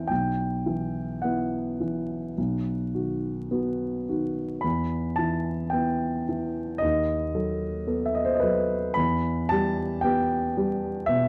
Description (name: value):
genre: classical, romantic nocturne for solo piano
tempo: 52-58 BPM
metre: 4/4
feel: rubato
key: unclear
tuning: A4 = 439 Hz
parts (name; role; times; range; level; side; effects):
- dark grand piano; solo; 0.0-11.3 s; B1 to B5; -27 LUFS; equal; none
room: moderate recital hall reverb, RT60 1.3 s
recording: close, detailed microphones, vinyl crackle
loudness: -27 LUFS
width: mono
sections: 0.0-11.3 A section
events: none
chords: 0.1 Bsus4; 2.4 B; 4.6 Em; 6.8 B7/D#; 9.0 Em